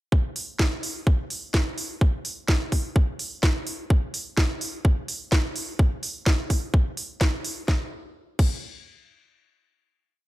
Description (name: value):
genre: house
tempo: 127 BPM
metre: 4/4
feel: swing 57% on 16ths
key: none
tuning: none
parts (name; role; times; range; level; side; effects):
- electronic kick drum; drums; 0.1-8.5 s; none; -22 LUFS; equal; none
- garage drum kit; drums; 0.4-8.5 s; crash cymbal, hi-hat, snare drum; -29 LUFS; right 1 dB; none
room: little or no reverb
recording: none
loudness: -22 LUFS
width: side -17 dB against mid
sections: 0.1-7.7 drop; 7.7-9.6 final hit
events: drop 0.1-7.7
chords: none